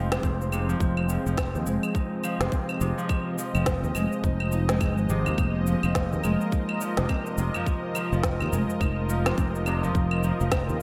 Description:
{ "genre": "organic downtempo", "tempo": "105 BPM", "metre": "4/4", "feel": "swing 59% on 16ths", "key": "F minor", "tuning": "A4 = 440 Hz", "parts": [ { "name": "warm analog pad", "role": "sustained chords", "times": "0.0-10.8 s", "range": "F3 to Eb5", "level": "-34 LUFS", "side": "equal", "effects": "chorus, sidechain pumping" }, { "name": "Celtic harp", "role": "arpeggios", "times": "0.0-10.8 s", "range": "C3 to Eb4", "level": "-33 LUFS", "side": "equal", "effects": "delay" }, { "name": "sustaining fretless electric bass", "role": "bass", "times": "0.0-10.8 s", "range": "F1 to Eb2", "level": "-29 LUFS", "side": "equal", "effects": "lush chorus, sidechain pumping" }, { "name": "wind-like tuned noise texture", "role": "texture", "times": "0.0-10.8 s", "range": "C5", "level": "-44 LUFS", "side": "equal", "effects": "none" }, { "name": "electronic snare drum, claves and shaker", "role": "drums", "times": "0.1-10.8 s", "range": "none", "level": "-34 LUFS", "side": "equal", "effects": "gated reverb" }, { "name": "electronic kick drum", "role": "drums", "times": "0.2-10.7 s", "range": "none", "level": "-30 LUFS", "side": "equal", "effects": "none" }, { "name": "tabla", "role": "percussion", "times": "6.8-9.9 s", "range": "none", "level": "-41 LUFS", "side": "equal", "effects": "none" } ], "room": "moderate lush hall reverb, RT60 2.4 s", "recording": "bright 1980s-style digital production", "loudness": "-26 LUFS", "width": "mono", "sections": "0.0-10.8 A section", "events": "none", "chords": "0.0 Fm7" }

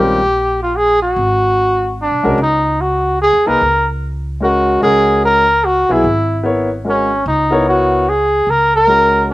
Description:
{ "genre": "modal jazz", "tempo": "148 BPM", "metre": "3/4", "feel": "swing 64% on 8ths", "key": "C# dorian", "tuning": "A4 = 440 Hz", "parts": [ { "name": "trumpet with bucket mute", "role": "melody", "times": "0.0-9.3 s", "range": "C#4 to A#4", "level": "-12 LUFS", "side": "equal", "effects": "slapback echo" }, { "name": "warm grand piano", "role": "accompaniment", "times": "0.0-0.2, 2.2-9.3 s", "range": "Eb3 to C#5", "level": "-16 LUFS", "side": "left 1 dB", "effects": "slapback echo" }, { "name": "upright bass", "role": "bass", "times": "0.0-9.3 s", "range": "Ab1 to D#2", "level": "-22 LUFS", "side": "equal", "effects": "none" } ], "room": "little or no reverb", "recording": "recorded outdoors, with no room sound", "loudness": "-11 LUFS", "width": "side -17 dB against mid", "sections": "0.0-2.4 A section; 2.4-9.3 B section", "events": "none", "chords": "0.0 Fm/Bb; 1.2 Ab7(b5, no3); 2.4 C#5; 7.3 F#/C#" }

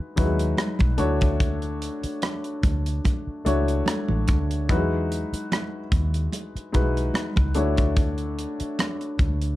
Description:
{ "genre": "lush 1970s-style soul", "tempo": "73 BPM", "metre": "4/4", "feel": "swing 54% on 16ths", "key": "unclear", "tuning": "A4 = 442 Hz", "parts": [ { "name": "warm grand piano", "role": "accompaniment", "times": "0.0-9.6 s", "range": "F#3 to C#5", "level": "-27 LUFS", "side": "left 2 dB", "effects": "none" }, { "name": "vintage muted fingered electric bass", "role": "bass", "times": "0.2-9.5 s", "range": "A1 to E2", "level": "-25 LUFS", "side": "equal", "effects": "none" }, { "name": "tight funk drum kit", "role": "drums", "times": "0.2-9.6 s", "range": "hi-hat, kick drum, rim click", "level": "-24 LUFS", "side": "equal", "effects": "none" }, { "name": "congas", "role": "percussion", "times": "0.2-9.4 s", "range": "none", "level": "-32 LUFS", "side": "right 2 dB", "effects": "none" } ], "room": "little or no reverb", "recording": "dark, warm production", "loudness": "-22 LUFS", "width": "side -16 dB against mid", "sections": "0.0-9.6 A section", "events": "none", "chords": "0.0 Emaj9; 1.0 Dmaj9; 4.7 Emaj9; 7.6 Dmaj9" }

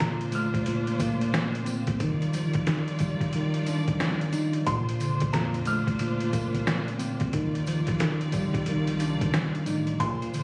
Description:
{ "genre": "hip hop, boom-bap hip-hop", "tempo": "90 BPM", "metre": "4/4", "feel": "swing 62% on 16ths", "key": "unclear", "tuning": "A4 = 435 Hz", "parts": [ { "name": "warm upright piano", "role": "melody", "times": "0.0-10.4 s", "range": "Bb5 to F6", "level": "-36 LUFS", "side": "equal", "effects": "analog delay" }, { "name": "mellow tine electric piano", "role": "accompaniment", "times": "0.0-10.4 s", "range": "Bb2 to Eb4", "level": "-30 LUFS", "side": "equal", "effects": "none" }, { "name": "clear studio string section", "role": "sustained chords", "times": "0.0-10.4 s", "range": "Bb2 to D5", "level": "-38 LUFS", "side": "equal", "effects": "none" }, { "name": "trip hop sampler-style drum kit", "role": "drums", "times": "0.0-10.4 s", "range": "hi-hat, kick drum, snare drum", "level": "-33 LUFS", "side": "equal", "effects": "none" }, { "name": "tambourine", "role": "percussion", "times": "0.3-10.4 s", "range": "none", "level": "-50 LUFS", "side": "equal", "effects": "none" }, { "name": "deep dub fingered electric bass", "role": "bass", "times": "4.7-10.3 s", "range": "A1 to F2", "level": "-35 LUFS", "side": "equal", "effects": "none" } ], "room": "light reverb, studio ambience", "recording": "recorded on a phone in the room, club reverb, vinyl crackle, compression", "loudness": "-27 LUFS", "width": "mono", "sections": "0.0-10.4 A section", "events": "break 0.0-4.7", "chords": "0.0 Bbmaj9; 2.0 Ebmaj9; 4.7 Bbmaj9; 7.3 Ebmaj9" }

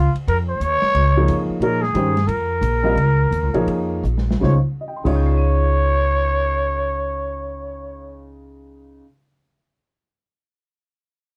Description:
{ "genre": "modal jazz", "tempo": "154-182 BPM", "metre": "4/4", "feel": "swing 62% on 8ths", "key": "Db lydian", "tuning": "A4 = 440 Hz", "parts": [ { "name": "growling trumpet", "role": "melody", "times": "0.0-8.3 s", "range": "F4 to Db5", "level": "-24 LUFS", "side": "equal", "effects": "none" }, { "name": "upright bass", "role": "bass", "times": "0.0-9.0 s", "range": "Bb1 to Bb2", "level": "-22 LUFS", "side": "equal", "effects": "none" }, { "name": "open jazz drum kit", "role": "drums", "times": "0.2-5.1 s", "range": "crash cymbal, hi-hat, kick drum, ride cymbal, snare drum", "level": "-32 LUFS", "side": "equal", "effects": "none" }, { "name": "warm upright piano", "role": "accompaniment", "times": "1.2-9.3 s", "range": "Db3 to Eb7", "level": "-26 LUFS", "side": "equal", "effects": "none" } ], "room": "light reverb", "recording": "none", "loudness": "-19 LUFS", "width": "mono", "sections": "0.0-4.4 A section; 4.4-7.5 B section", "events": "slowing down 1.6-4.4; drum fill 4.0-4.4", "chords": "0.0 Bbm; 4.4 Dbmaj7" }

